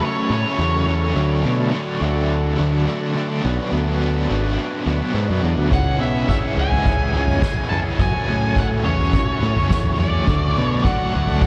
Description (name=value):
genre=psychedelic rock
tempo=105 BPM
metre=4/4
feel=straight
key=unclear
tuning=A4 = 440 Hz
part: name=octave-fuzz lead guitar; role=melody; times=0.0-0.8, 5.7-11.5 s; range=C#5 to A5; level=-28 LUFS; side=equal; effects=distortion, diffuse ambient delay
part: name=bright tonewheel organ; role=sustained chords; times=0.0-11.5 s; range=C#4 to D5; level=-31 LUFS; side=equal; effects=slow rotary speaker
part: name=crunchy overdriven guitar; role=riff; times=0.0-11.5 s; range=F#2 to D4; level=-26 LUFS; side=equal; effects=tremolo
part: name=growling picked electric bass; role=bass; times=0.3-11.5 s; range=G#1 to B2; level=-23 LUFS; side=equal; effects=overdrive
part: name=soft-mallet drum kit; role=drums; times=5.7-11.5 s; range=kick drum, snare drum, toms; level=-23 LUFS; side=equal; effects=none
room=moderate huge ambient reverb, RT60 8.6 s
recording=dreamy mix soaked in reverb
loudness=-20 LUFS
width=mono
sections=0.0-11.5 A section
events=none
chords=0.0 F#m; 1.2 D; 3.4 Bm; 5.7 C#m; 8.0 F#m; 10.3 D